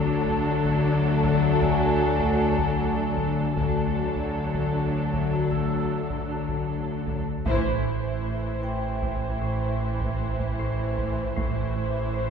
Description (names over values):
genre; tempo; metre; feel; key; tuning
cinematic, suspense film score; 77 BPM; 5/4; straight; A minor from 7.5 s; A4 = 441 Hz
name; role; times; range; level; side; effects
muted studio violin section; melody; 0.0-12.3 s; A4 to C5; -32 LUFS; left 2 dB; none
muted chamber violin section; second line; 0.0-12.3 s; D4 to E4; -33 LUFS; left 1 dB; none
muted symphonic viola section; accompaniment; 0.0-12.3 s; E3 to F#3; -33 LUFS; right 1 dB; none
warm French horn section; sustained chords; 0.0-7.1 s; A3 to F#4; -31 LUFS; right 1 dB; none
muted chamber cello section; bass; 0.0-12.3 s; A2 to D3; -32 LUFS; right 2 dB; none
muted chamber double bass section; bass; 0.0-12.3 s; A1 to D2; -31 LUFS; equal; none
saturated sub bass; drone; 0.0-12.3 s; A1 to D2; -34 LUFS; right 2 dB; none
buzzing marimba with medium hard mallets; riff; 0.1-12.3 s; A2 to D4; -30 LUFS; left 10 dB; none
solo taiko drums; drums; 0.3-12.1 s; none; -35 LUFS; right 1 dB; none
vibraphone with medium hard mallets; texture; 1.6-12.3 s; A4 to E6; -36 LUFS; right 2 dB; none
room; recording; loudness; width
wet scoring stage reverb, RT60 1.9 s; heard from further back in the room; -23 LUFS; side -6 dB against mid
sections
0.0-7.5 A section; 7.5-12.3 B section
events
band accent 7.5-8.2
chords
0.0 D; 7.5 Am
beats
0.46 1.24 2.02 2.79 | 3.57 4.35 5.13 5.91 6.69 | 7.47 8.25 9.03 9.81 10.59 | 11.37 12.14